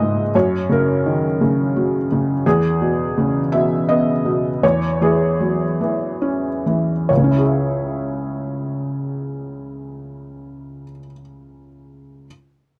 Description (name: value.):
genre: classical.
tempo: 66-86 BPM.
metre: 3/4.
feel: rubato.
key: C# dorian.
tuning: A4 = 440 Hz.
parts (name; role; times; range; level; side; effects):
felt-muted upright piano; accompaniment; 0.0-12.3 s; C#2 to E5; -20 LUFS; equal; none.
room: light reverb.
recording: none.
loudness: -19 LUFS.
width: mono.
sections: 0.0-7.1 A section; 7.1-12.2 B section.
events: slowing down 1.4-7.1.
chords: 0.3 F#; 2.4 E; 4.6 C#m/E; 7.1 C#m.